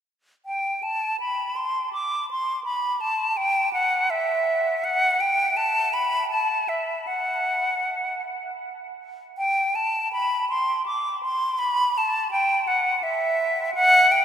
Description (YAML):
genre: classical, baroque-style fantasia for unaccompanied flute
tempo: 54 BPM (dotted quarters)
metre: 6/8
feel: rubato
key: E minor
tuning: A4 = 439 Hz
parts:
  - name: bright silver concert flute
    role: solo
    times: 0.5-14.2 s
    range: E5 to D6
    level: -21 LUFS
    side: equal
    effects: none
room: wet cathedral reverb, RT60 6.3 s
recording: none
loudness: -21 LUFS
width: side -9 dB against mid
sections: 0.5-14.2 A section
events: none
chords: none